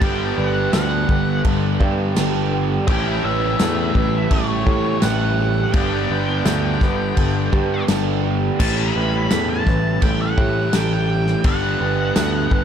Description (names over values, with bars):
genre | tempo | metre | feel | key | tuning
rock, shoegaze and dream pop | 84 BPM | 4/4 | straight | unclear | A4 = 440 Hz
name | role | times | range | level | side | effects
octave-fuzz lead guitar | melody | 0.0-12.6 s | C#5 to B5 | -26 LUFS | left 1 dB | distortion, tape echo
electric guitar through a small old amp | arpeggios | 0.0-12.6 s | G4 to B4 | -28 LUFS | right 3 dB | lush chorus, tape echo
crunchy overdriven guitar | riff | 0.0-12.6 s | G2 to E4 | -25 LUFS | left 10 dB | lush chorus
distorted electric guitar | riff | 0.0-8.6 s | G2 to A3 | -27 LUFS | equal | overdrive
overdriven semi-hollow guitar | riff | 0.0-12.6 s | G2 to G4 | -24 LUFS | right 10 dB | reverse reverb
picked electric bass | bass | 0.0-12.6 s | G1 to A2 | -23 LUFS | equal | none
loose indie drum kit | drums | 0.0-12.6 s | crash cymbal, kick drum, snare drum | -22 LUFS | equal | none
tambourine | percussion | 0.7-12.3 s | none | -34 LUFS | right 14 dB | none
room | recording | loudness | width
small room ambience | dark, warm production | -16 LUFS | side -8 dB against mid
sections
0.0-8.6 A section; 8.6-12.6 A section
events
none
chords
0.0 Gmaj7; 2.9 A13; 5.7 G; 8.6 A9; 11.5 Gmaj7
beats
| 0.01 0.73 1.45 2.17 | 2.88 3.60 4.32 5.03 | 5.75 6.46 7.18 7.89 | 8.60 9.32 10.03 10.74 | 11.45 12.16